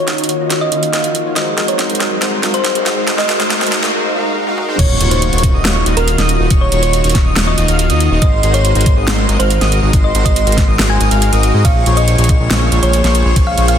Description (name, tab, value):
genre	future bass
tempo	140 BPM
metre	4/4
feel	half-time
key	unclear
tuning	A4 = 438 Hz
part	thumb-piano-like synth pluck	melody	0.0-13.8 s	Bb4 to Ab5	-20 LUFS	right 1 dB	chorus, sidechain pumping, ping-pong delay
part	airy breathy pad	sustained chords	0.0-13.8 s	Db3 to Gb4	-27 LUFS	left 2 dB	none
part	soft supersaw	riff	0.0-13.8 s	Eb3 to F5	-18 LUFS	equal	sidechain pumping, low-pass filter
part	riser, swell and impact	sound effects	0.5-6.5 s	none	-25 LUFS	right 1 dB	none
part	dubstep drum kit	drums	0.1-13.8 s	crash cymbal, hi-hat, ride cymbal, snare drum, toms	-18 LUFS	right 1 dB	high-pass filter on snare, high-pass filter on hats, high-pass filter on toms, high-pass filter on cymbals
part	airy dreamy lead	arpeggios	4.8-13.8 s	C6 to F6	-22 LUFS	equal	chorus, sidechain pumping, ping-pong delay
part	fat analog bass	bass	4.8-13.8 s	Eb1 to Ab2	-14 LUFS	equal	tube saturation, sidechain pumping
part	electronic kick drum	drums	4.8-13.4 s	none	-12 LUFS	equal	none
room	moderate lush hall reverb, RT60 1.6 s, digital ambience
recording	dense, heavily limited modern master, high-pass filter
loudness	-11 LUFS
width	side -9 dB against mid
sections	0.0-4.8 A section; 4.8-13.8 B section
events	build-up 0.0-4.8; drum fill 0.0-3.9, 4.5-4.8; filter sweep on supersaw synth 0.0-4.8; riser 0.5-3.9; break 3.9-4.8; swell 3.9-4.8; drop 4.8-13.8; impact 4.8-6.5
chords	0.0 Ebm7; 1.4 Ab7; 4.8 Ebm7; 8.2 Ab7; 11.6 Bbm7